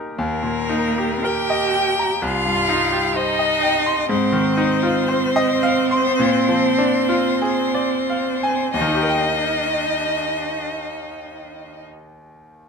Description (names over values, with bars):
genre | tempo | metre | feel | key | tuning
classical, slow romantic movement for piano trio | 43-64 BPM | 4/4 | rubato | Eb major | A4 = 440 Hz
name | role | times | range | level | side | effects
bright grand piano | accompaniment | 0.0-12.7 s | C2 to C6 | -22 LUFS | left 1 dB | none
rich violin | melody | 0.2-11.8 s | Bb4 to G5 | -22 LUFS | left 8 dB | none
rich cello | second line | 0.2-11.8 s | Bb3 to G4 | -22 LUFS | right 8 dB | none
room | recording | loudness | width
light reverb | close, detailed microphones | -17 LUFS | side -5 dB against mid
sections
0.2-8.7 A section; 8.7-12.7 B section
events
slowing down 0.0-8.7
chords
0.2 Eb; 2.2 Cm; 4.1 Fm7/Ab; 6.2 Bb7; 8.7 Eb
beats
| 0.19 1.25 2.23 3.16 | 4.11 5.11 6.21 7.43 | 8.74 9.96 11.19 12.46